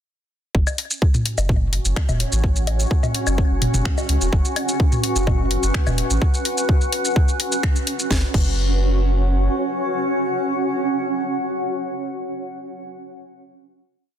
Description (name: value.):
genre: minimal techno.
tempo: 127 BPM.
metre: 4/4.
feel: straight.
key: unclear.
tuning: A4 = 439 Hz.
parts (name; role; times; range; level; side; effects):
saturated sub bass; bass; 0.5-9.5 s; E1 to C#2; -21 LUFS; equal; sidechain pumping.
electronic kick drum; drums; 0.5-8.5 s; none; -18 LUFS; equal; none.
granular cloud pad; texture; 1.8-12.1 s; C#4 to F#5; -24 LUFS; equal; built-in reverb, sidechain pumping.
garage drum kit; drums; 0.7-8.5 s; crash cymbal, finger snaps, hi-hat, shaker, snare drum; -26 LUFS; left 1 dB; soft clipping on snare.
electronic bongos, woodblock and toms; percussion; 0.7-6.0 s; none; -25 LUFS; left 1 dB; ping-pong delay.
room: little or no reverb.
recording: dense, heavily limited modern master.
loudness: -18 LUFS.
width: side -10 dB against mid.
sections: 0.5-8.1 drop; 8.1-11.9 final chord.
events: drop 0.5-8.1.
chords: 0.5 F#5.